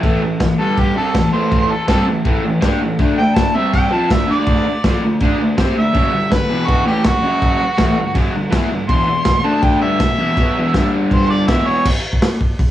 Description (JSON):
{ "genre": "garage rock duo or trio", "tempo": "163 BPM", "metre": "4/4", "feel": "straight", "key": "unclear", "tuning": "A4 = 440 Hz", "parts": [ { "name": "raw garage guitar", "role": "riff", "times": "0.0-11.9 s", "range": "E2 to C5", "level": "-17 LUFS", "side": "equal", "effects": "overdrive" }, { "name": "crunchy breakbeat drum kit", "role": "drums", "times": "0.0-12.7 s", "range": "crash cymbal, hi-hat, kick drum, snare drum", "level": "-17 LUFS", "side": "equal", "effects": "none" }, { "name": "warm harmonica", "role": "melody", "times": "0.6-11.8 s", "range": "F#4 to C6", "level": "-19 LUFS", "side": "equal", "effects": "overdrive" } ], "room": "moderate stone room reverb, RT60 1.1 s, small room ambience", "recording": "none", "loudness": "-13 LUFS", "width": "side -12 dB against mid", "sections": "0.0-11.8 A section", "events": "harmonica solo 0.0-11.8", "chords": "0.0 A5; 0.6 G5; 1.0 A5; 3.0 D5; 3.6 C5; 3.9 D5; 6.0 G5; 6.5 E5; 6.9 G5; 7.2 F#5; 7.6 G5; 8.9 E5; 9.5 D5; 9.8 E5; 10.7 G5; 11.5 E5; 11.8 N.C." }